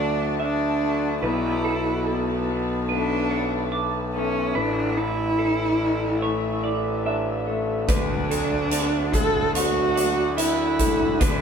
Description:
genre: post-rock.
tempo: 72 BPM.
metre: 4/4.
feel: straight.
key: D major.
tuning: A4 = 439 Hz.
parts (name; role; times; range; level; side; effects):
warm cello; melody; 0.0-11.4 s; C#4 to A4; -25 LUFS; right 1 dB; none.
dark studio string section; sustained chords; 0.0-11.4 s; F#4 to A5; -33 LUFS; left 1 dB; none.
electric guitar through a small old amp; arpeggios; 0.0-11.4 s; A2 to D4; -29 LUFS; left 4 dB; none.
twelve-string electric guitar; arpeggios; 0.0-11.4 s; A4 to D6; -30 LUFS; right 4 dB; none.
fuzz picked electric bass; bass; 0.0-11.4 s; A1 to D2; -27 LUFS; equal; overdrive.
big rock drum kit; drums; 7.9-11.4 s; hi-hat, kick drum; -25 LUFS; equal; none.
room: moderate small room reverb, RT60 0.5 s.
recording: band playing live in one room.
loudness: -21 LUFS.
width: side -7 dB against mid.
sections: 0.0-11.4 A section.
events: none.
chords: 0.0 D; 1.2 Bm7; 4.6 Asus4; 7.9 D.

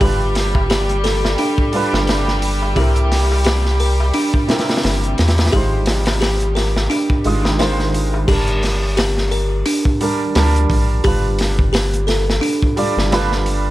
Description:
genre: trip hop.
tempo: 87 BPM.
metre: 4/4.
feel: swing 56% on 16ths.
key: G dorian.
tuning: A4 = 441 Hz.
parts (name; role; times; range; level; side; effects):
clear upright piano; accompaniment; 0.0-13.7 s; C3 to Eb6; -23 LUFS; right 2 dB; harmonic tremolo, vintage 12-bit sampler grit, tape echo.
warm studio violin section; sustained chords; 0.0-8.3 s; G3 to G4; -25 LUFS; equal; none.
music box; arpeggios; 0.0-12.7 s; D4 to Bb4; -22 LUFS; equal; vintage 12-bit sampler grit, tape echo.
round analog bass; bass; 0.0-13.7 s; G1 to E2; -18 LUFS; equal; none.
crunchy breakbeat drum kit; drums; 0.0-13.6 s; crash cymbal, hi-hat, kick drum, snare drum; -20 LUFS; equal; none.
darbuka; percussion; 0.0-8.3 s; none; -32 LUFS; left 2 dB; none.
room: little or no reverb.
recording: vinyl crackle.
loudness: -14 LUFS.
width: side -16 dB against mid.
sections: 0.0-8.3 A section; 8.3-13.7 B section.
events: none.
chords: 0.0 G7; 2.8 C7; 5.5 Ab6; 8.3 Gmadd9; 11.0 G7.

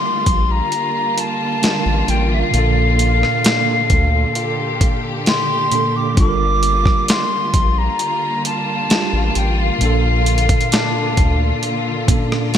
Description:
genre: contemporary R&B.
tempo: 66 BPM.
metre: 4/4.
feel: straight.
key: G minor.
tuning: A4 = 440 Hz.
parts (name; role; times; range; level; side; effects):
concert flute; melody; 0.0-12.3 s; F5 to D6; -20 LUFS; left 1 dB; ping-pong delay.
tine electric piano; accompaniment; 0.0-12.6 s; Bb2 to Bb4; -23 LUFS; right 2 dB; overdrive, medium stereo tremolo.
warm studio string section; sustained chords; 0.0-12.6 s; D3 to A4; -23 LUFS; left 2 dB; sidechain pumping.
hammered dulcimer; texture; 0.0-12.6 s; D4 to Bb4; -32 LUFS; left 3 dB; ping-pong delay.
round analog bass; bass; 0.3-11.5 s; G1 to D2; -18 LUFS; equal; none.
dusty soul sampler-style drum kit; drums; 0.3-12.6 s; hi-hat, kick drum, rim click, snare drum; -18 LUFS; equal; overdrive, gated reverb.
room: moderate lush hall reverb, RT60 2.5 s.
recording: bright 1980s-style digital production.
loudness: -14 LUFS.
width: side -9 dB against mid.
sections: 0.0-12.6 A section.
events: none.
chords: 0.0 Gm7; 2.5 Bbmaj7; 6.2 Gm7; 9.8 Bbmaj7.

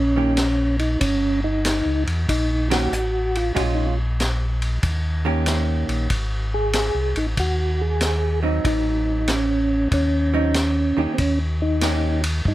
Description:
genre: soul jazz organ trio.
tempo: 94 BPM.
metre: 4/4.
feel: swing 67% on 8ths.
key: Eb mixolydian.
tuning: A4 = 441 Hz.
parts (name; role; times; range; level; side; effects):
percussive tonewheel organ; melody; 0.0-12.5 s; C4 to Ab4; -22 LUFS; equal; slow rotary speaker, chorus vibrato.
mellow tonewheel organ; bass; 0.0-12.5 s; G1 to G2; -22 LUFS; equal; slow rotary speaker.
vintage hollow-body jazz guitar; accompaniment; 0.2-12.2 s; Eb3 to G4; -25 LUFS; right 3 dB; none.
vintage drum kit; drums; 0.4-12.5 s; hi-hat, kick drum, ride cymbal, snare drum; -26 LUFS; equal; none.
room: light reverb.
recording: none.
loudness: -19 LUFS.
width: side -15 dB against mid.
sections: 0.0-12.5 A section.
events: band accent 2.6-2.9.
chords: 0.0 Eb7; 3.6 Bbm7; 4.8 Eb7; 6.1 Ab; 8.6 Adim7; 11.2 Eb7.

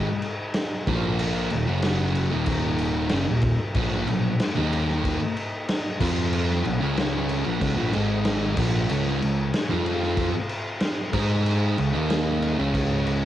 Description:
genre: quiet-loud alternative rock.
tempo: 94 BPM.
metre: 4/4.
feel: straight.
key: unclear.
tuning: A4 = 438 Hz.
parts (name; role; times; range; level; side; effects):
percussive tonewheel organ; sustained chords; 0.0-13.2 s; Ab3 to Eb6; -36 LUFS; equal; overdrive, slow rotary speaker, cassette tape.
sludgy distorted guitar; riff; 0.0-13.2 s; Eb2 to Ab4; -27 LUFS; right 6 dB; overdrive, cassette tape.
thick fuzz guitar; riff; 0.0-13.2 s; Eb2 to Ab4; -28 LUFS; left 6 dB; distortion, cassette tape.
growling picked electric bass; bass; 0.0-13.2 s; Eb1 to Ab2; -27 LUFS; equal; overdrive.
raw garage drum kit; drums; 0.2-13.2 s; crash cymbal, kick drum, snare drum; -27 LUFS; equal; cassette tape.
room: light reverb.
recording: home recording on cassette.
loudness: -22 LUFS.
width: side -12 dB against mid.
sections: 0.0-13.2 A section.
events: none.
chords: 0.0 Ab5; 0.9 Bb5; 1.5 Eb; 1.7 Gb5; 2.3 Eb; 3.8 B5; 4.6 Eb5; 6.0 F5; 6.7 B5; 6.8 Db5; 7.5 B5; 7.9 Ab5; 8.6 B5; 8.9 Db5; 9.7 F5; 11.1 Ab5; 11.8 Db5; 11.9 Eb5; 12.6 Db5.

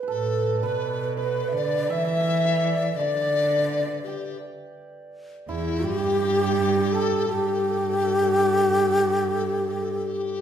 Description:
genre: chinese traditional, Chinese chamber ensemble.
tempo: 83 BPM.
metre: 4/4.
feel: straight.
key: G gong mode.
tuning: A4 = 441 Hz.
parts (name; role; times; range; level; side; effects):
hammered dulcimer; second line; 0.0-10.4 s; E4 to E5; -31 LUFS; right 6 dB; none.
breathy mellow xiao; melody; 0.1-10.4 s; E4 to E5; -24 LUFS; left 2 dB; none.
dark cello; second line; 0.1-10.4 s; E2 to E3; -28 LUFS; right 5 dB; none.
mellow hollow large dizi; second line; 0.1-10.4 s; E4 to E5; -29 LUFS; left 5 dB; none.
room: wet recital hall reverb, RT60 1.3 s.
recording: minimal, uncompressed stereo recording.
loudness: -21 LUFS.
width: side -9 dB against mid.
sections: 0.0-10.4 A section.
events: none.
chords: none.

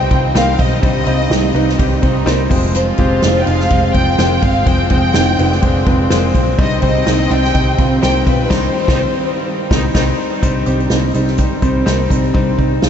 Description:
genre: piano-driven pop.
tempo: 125 BPM.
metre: 4/4.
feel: swing 56% on 16ths.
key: C minor.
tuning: A4 = 440 Hz.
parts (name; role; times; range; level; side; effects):
dark studio violin section; melody; 0.0-9.5 s; B4 to G5; -20 LUFS; left 2 dB; tape echo.
muted French horn section; second line; 0.0-10.1 s; C3 to F4; -27 LUFS; right 1 dB; none.
clear concert grand piano; accompaniment; 0.0-12.9 s; G2 to Eb5; -19 LUFS; left 3 dB; none.
warm studio string section; sustained chords; 0.0-12.9 s; Eb3 to C4; -24 LUFS; right 1 dB; none.
vintage muted picked electric bass; bass; 0.0-12.9 s; F1 to C2; -17 LUFS; equal; none.
fingerpicked steel-string acoustic guitar; riff; 0.1-12.9 s; Bb3 to Eb4; -23 LUFS; right 5 dB; lush chorus.
unplugged drum kit; drums; 0.1-12.9 s; crash cymbal, hi-hat, kick drum, ride cymbal, snare drum; -17 LUFS; equal; none.
room: moderate huge ambient reverb, RT60 7.0 s.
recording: dreamy mix soaked in reverb, nothing above 7.9 kHz.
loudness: -12 LUFS.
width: side -8 dB against mid.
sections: 0.0-10.4 A section; 10.4-12.9 B section.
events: band accent 8.5-10.4.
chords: 0.0 Cm; 2.5 Fm; 6.6 Cm.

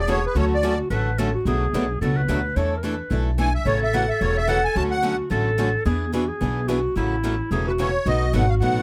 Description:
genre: acoustic string swing (jazz manouche).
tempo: 218 BPM.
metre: 4/4.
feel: swing 56% on 8ths.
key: A major.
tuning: A4 = 440 Hz.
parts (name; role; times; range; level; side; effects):
musette accordion; melody; 0.0-0.8, 3.4-5.2, 7.7-8.8 s; B4 to A5; -26 LUFS; equal; none.
warm clarinet; second line; 0.0-8.8 s; E4 to C#5; -28 LUFS; equal; none.
upright bass; bass; 0.0-8.8 s; E1 to E2; -26 LUFS; equal; none.
picked steel-string acoustic guitar; accompaniment; 0.1-8.8 s; B2 to A4; -31 LUFS; equal; none.
picked steel-string acoustic guitar; accompaniment; 0.1-8.8 s; B2 to B4; -33 LUFS; equal; none.
room: light reverb.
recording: close, detailed microphones.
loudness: -22 LUFS.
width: mono.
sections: 0.0-8.1 A section.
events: none.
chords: 0.4 Dmaj7; 1.5 Bm7; 2.6 E7sus4; 3.7 A6; 4.8 Dmaj7; 5.9 E7; 7.0 A6; 8.1 B7.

